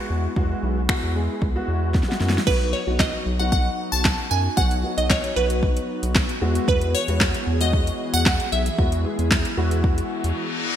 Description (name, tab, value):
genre	dance-pop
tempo	114 BPM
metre	4/4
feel	straight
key	E major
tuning	A4 = 440 Hz
part	warm grand piano	accompaniment	0.0-10.4 s	F#3 to G#4	-29 LUFS	equal	ensemble chorus, sidechain pumping
part	round analog bass	bass	0.1-10.3 s	B1 to F#2	-24 LUFS	equal	sidechain pumping
part	deep house drum kit	drums	0.4-10.4 s	crash cymbal, finger snaps, handclaps, hi-hat, kick drum, snare drum	-22 LUFS	equal	gated reverb
part	glassy wavetable pluck	melody	2.5-10.6 s	B4 to A5	-25 LUFS	right 1 dB	chorus
part	airy breathy pad	sustained chords	2.8-10.8 s	E3 to G#4	-32 LUFS	left 2 dB	chorus, sidechain pumping
part	reverse cymbal	sound effects	10.1-10.8 s	none	-28 LUFS	left 4 dB	none
room	light reverb, digital ambience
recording	bright 1980s-style digital production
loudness	-19 LUFS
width	side -10 dB against mid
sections	0.0-2.5 A section; 2.5-10.8 B section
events	drum fill 1.9-2.5; reverse cymbal 10.1-10.8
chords	0.0 Eadd9; 2.5 B; 6.4 Eadd9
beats	| 0.36 0.89 1.42 1.94 | 2.47 3.00 3.52 4.05 | 4.57 5.10 5.63 6.15 | 6.68 7.21 7.73 8.26 | 8.79 9.31 9.84 10.36